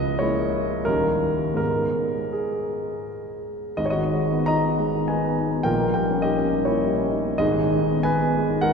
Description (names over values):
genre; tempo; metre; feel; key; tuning
classical, romantic character piece for solo piano; 78-108 BPM; 3/4; rubato; G# minor; A4 = 440 Hz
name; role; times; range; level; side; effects
warm grand piano; solo; 0.0-8.7 s; C#1 to A#5; -21 LUFS; equal; none
room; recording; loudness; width
wet cathedral reverb, RT60 4.4 s; minimal, uncompressed stereo recording; -20 LUFS; side -5 dB against mid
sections
0.0-3.8 A section; 3.8-8.7 B section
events
none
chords
0.0 A#m7b5/C#; 0.9 D#7; 1.6 G#m; 5.7 D#7/A#; 7.4 G#m